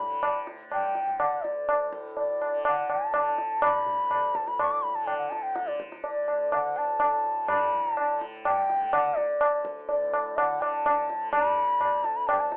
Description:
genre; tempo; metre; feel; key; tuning
indian classical, Hindustani; 124 BPM; 4/4; straight; D raga bilaval; A4 = 440 Hz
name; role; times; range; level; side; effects
bansuri; melody; 0.0-12.6 s; D5 to D6; -26 LUFS; equal; none
tanpura; drone; 0.0-12.6 s; D2 to D3; -41 LUFS; equal; none
tabla; percussion; 0.2-12.6 s; none; -27 LUFS; equal; none
room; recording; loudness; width
light reverb; rough home demo mix, telephone sound; -24 LUFS; side -26 dB against mid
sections
0.0-7.5 A section; 7.5-12.6 B section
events
none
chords
none

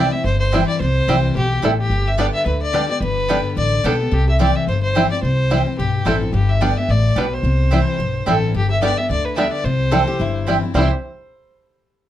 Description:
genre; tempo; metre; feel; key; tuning
bluegrass; 217 BPM; 4/4; swing 55% on 8ths; C major; A4 = 441 Hz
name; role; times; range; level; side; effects
dark fiddle; melody; 0.0-10.9 s; G4 to E5; -22 LUFS; left 1 dB; none
picked steel-string acoustic guitar; accompaniment; 0.0-10.9 s; G2 to G4; -21 LUFS; left 4 dB; none
bluegrass banjo; arpeggios; 0.0-10.9 s; G3 to G4; -22 LUFS; right 1 dB; none
mandolin; stabs; 0.0-10.9 s; B3 to G5; -23 LUFS; right 8 dB; none
upright bass; bass; 0.0-10.9 s; G1 to D2; -20 LUFS; right 1 dB; none
lap resonator guitar; second line; 9.9-10.9 s; E4 to A4; -26 LUFS; left 4 dB; none
room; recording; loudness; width
moderate small room reverb, RT60 0.5 s; dark, warm production; -16 LUFS; side -12 dB against mid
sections
0.0-8.5 A section; 8.5-10.7 B section; 10.7-11.8 C section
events
none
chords
0.0 C; 1.9 G; 4.1 C; 6.3 G; 7.4 C; 8.5 G; 9.6 C

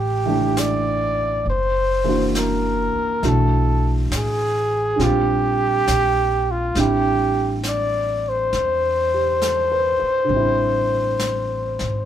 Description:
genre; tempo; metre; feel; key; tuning
jazz ballad; 68 BPM; 4/4; swing 68% on 8ths; A minor; A4 = 439 Hz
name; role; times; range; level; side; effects
breathy trumpet; melody; 0.0-12.1 s; F4 to D5; -20 LUFS; equal; none
upright bass; bass; 0.0-12.1 s; F#1 to E2; -24 LUFS; equal; none
dark grand piano; accompaniment; 0.3-12.1 s; D3 to C5; -24 LUFS; right 2 dB; none
jazz brush drum kit; drums; 0.6-12.1 s; brushed snare drum, hi-hat, snare drum; -31 LUFS; left 1 dB; none
room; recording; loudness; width
moderate small room reverb, RT60 0.6 s; band playing live in one room; -17 LUFS; side -10 dB against mid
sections
0.0-12.1 A section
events
none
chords
0.0 A5; 1.5 F#aug7; 3.2 Bm7; 5.0 Bb69; 6.8 Am7

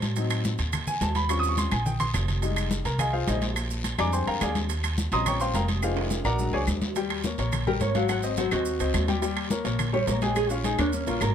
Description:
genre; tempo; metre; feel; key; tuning
Afro-Cuban jazz; 212 BPM; 4/4; straight; Eb mixolydian; A4 = 440 Hz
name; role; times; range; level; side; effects
upright bass; bass; 0.0-11.3 s; F1 to A2; -28 LUFS; right 1 dB; none
congas; percussion; 0.0-11.3 s; none; -32 LUFS; left 2 dB; none
guiro; percussion; 0.0-11.3 s; none; -40 LUFS; left 6 dB; none
maracas; percussion; 0.0-11.3 s; none; -40 LUFS; right 6 dB; none
timbales; percussion; 0.0-11.3 s; none; -34 LUFS; right 9 dB; none
warm baby grand piano; accompaniment; 0.2-11.3 s; F3 to Eb6; -28 LUFS; left 3 dB; none
claves; percussion; 0.3-11.3 s; none; -36 LUFS; left 5 dB; none
nylon-string guitar; melody; 7.7-11.3 s; Db4 to Gb5; -28 LUFS; right 2 dB; none
room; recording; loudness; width
light reverb; close, detailed microphones; -24 LUFS; side -8 dB against mid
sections
0.0-7.0 A section; 7.0-11.3 A section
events
grand piano solo 0.0-7.0; drum fill 1.6-2.4, 5.8-7.0; nylon-string guitar solo 7.0-11.3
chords
0.2 Adim7; 1.3 Eb13; 2.4 Fm7; 3.6 Bb13; 4.7 Eb13; 5.8 Fm7; 6.4 Bb7alt; 7.0 Eb7; 8.1 Ab7; 9.2 Eb7; 10.4 Bbm7

